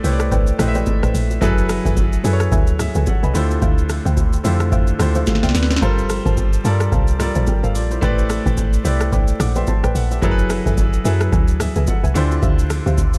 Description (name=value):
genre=amapiano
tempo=109 BPM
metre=4/4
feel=swing 58% on 16ths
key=unclear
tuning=A4 = 440 Hz
part: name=clear concert grand piano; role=accompaniment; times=0.0-13.2 s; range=D3 to D6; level=-24 LUFS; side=equal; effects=none
part: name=soft round pluck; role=stabs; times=0.0-13.0 s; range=G4 to A5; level=-32 LUFS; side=equal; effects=chorus, tape echo
part: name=deep log drum bass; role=bass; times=0.0-13.2 s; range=F#1 to G2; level=-22 LUFS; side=equal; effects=none
part: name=booming analog drum machine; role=drums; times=0.0-13.2 s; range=hi-hat, kick drum, rim click, shaker, snare drum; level=-22 LUFS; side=equal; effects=none
part: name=congas and bongos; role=percussion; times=0.3-13.1 s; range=none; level=-31 LUFS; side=equal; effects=none
room=digital ambience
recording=dark, warm production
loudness=-18 LUFS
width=mono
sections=0.0-13.2 A section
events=drum fill 5.3-5.8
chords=0.0 Am11; 1.4 F#m11; 3.3 Dm11; 5.8 Gm11; 8.0 Am11; 10.2 F#m11; 12.2 Dm11